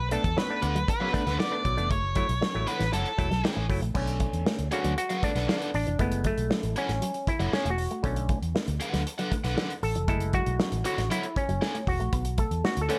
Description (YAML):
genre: funk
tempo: 117 BPM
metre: 4/4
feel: straight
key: B dorian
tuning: A4 = 439 Hz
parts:
  - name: octave-fuzz lead guitar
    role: melody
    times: 0.0-3.4 s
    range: A4 to D5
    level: -33 LUFS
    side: equal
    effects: distortion
  - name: vintage muted fingered electric bass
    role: bass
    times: 0.0-12.9 s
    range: E1 to E2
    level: -32 LUFS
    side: equal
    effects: none
  - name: electric guitar with an envelope filter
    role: riff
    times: 0.1-12.8 s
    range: E3 to B3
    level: -38 LUFS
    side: equal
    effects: subtle chorus
  - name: auto-wah clav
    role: stabs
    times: 0.1-13.0 s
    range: B2 to A4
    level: -33 LUFS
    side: equal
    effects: none
  - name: warm soul drum kit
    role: drums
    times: 0.1-13.0 s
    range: crash cymbal, hi-hat, kick drum, snare drum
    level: -33 LUFS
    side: equal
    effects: none
  - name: biting overdriven guitar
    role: accompaniment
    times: 0.6-13.0 s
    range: D4 to G#5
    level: -36 LUFS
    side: equal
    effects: none
room: small room ambience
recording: none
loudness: -28 LUFS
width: mono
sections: 0.0-4.0 A section; 4.0-13.0 B section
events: clav solo 4.0-13.0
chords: 0.0 Bm7; 1.9 F#m7; 4.0 Bm7; 6.0 F#m7; 8.0 Bm7; 10.1 F#m7; 12.1 Bm7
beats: 0.37 0.88 1.39 | 1.91 2.42 2.93 3.44 | 3.95 4.46 4.97 5.49 | 6.00 6.51 7.02 7.53 | 8.04 8.55 9.06 9.57 | 10.09 10.60 11.11 11.62 | 12.13 12.64